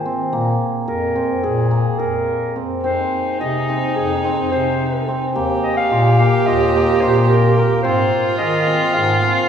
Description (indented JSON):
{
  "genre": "contemporary instrumental, chamber music in an uneven meter",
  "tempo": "216 BPM (eighths)",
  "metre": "9/8",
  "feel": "straight",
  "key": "F minor",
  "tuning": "A4 = 440 Hz",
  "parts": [
    { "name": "mellow clarinet", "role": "melody", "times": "0.0-9.5 s", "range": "Ab4 to F5", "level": "-21 LUFS", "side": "equal", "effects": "none" },
    { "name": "hammered dulcimer", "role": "arpeggios", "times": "0.0-9.5 s", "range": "Bb3 to Ab4", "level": "-20 LUFS", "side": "right 1 dB", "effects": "none" },
    { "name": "warm bass clarinet", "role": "bass", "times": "0.0-9.4 s", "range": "Eb2 to Eb3", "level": "-20 LUFS", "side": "left 1 dB", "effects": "none" },
    { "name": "warm viola", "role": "second line", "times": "2.8-9.5 s", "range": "Eb4 to G4", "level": "-20 LUFS", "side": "right 2 dB", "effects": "none" }
  ],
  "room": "wet scoring stage reverb, RT60 2.0 s",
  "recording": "heard from further back in the room",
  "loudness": "-15 LUFS",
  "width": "side -8 dB against mid",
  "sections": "0.0-9.5 A section",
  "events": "none",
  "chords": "0.3 Bb5; 5.4 Ebsus2; 7.8 Ab6"
}